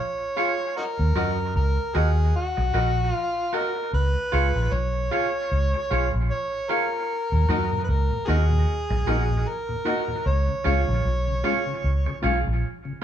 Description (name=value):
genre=reggae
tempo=76 BPM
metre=4/4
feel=swing 58% on 16ths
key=Eb minor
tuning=A4 = 438 Hz
part: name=overdriven harmonica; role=melody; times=0.0-12.2 s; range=Eb4 to Db5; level=-28 LUFS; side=equal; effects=none
part: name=electric guitar at the edge of break-up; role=accompaniment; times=0.4-13.0 s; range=F4 to Eb5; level=-30 LUFS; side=right 6 dB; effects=tape echo
part: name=bright upright piano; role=stabs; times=0.4-13.0 s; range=F4 to Gb5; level=-31 LUFS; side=left 4 dB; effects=none
part: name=vintage muted fingered electric bass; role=bass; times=1.0-12.6 s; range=Bb1 to Gb2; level=-23 LUFS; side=equal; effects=none
part: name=mellow tonewheel organ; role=accompaniment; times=7.3-13.0 s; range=Eb2 to Gb4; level=-32 LUFS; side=left 2 dB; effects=chorus vibrato
room=moderate large studio reverb, RT60 1.0 s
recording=band playing live in one room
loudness=-21 LUFS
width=side -10 dB against mid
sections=0.0-13.0 A section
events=none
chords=0.0 Db; 0.8 Ebm; 3.9 Db; 7.1 Ebm; 10.3 Db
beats=| 0.76 1.55 2.35 3.14 | 3.93 4.72 5.51 6.30 | 7.09 7.88 8.68 9.47 | 10.26 11.05 11.84 12.63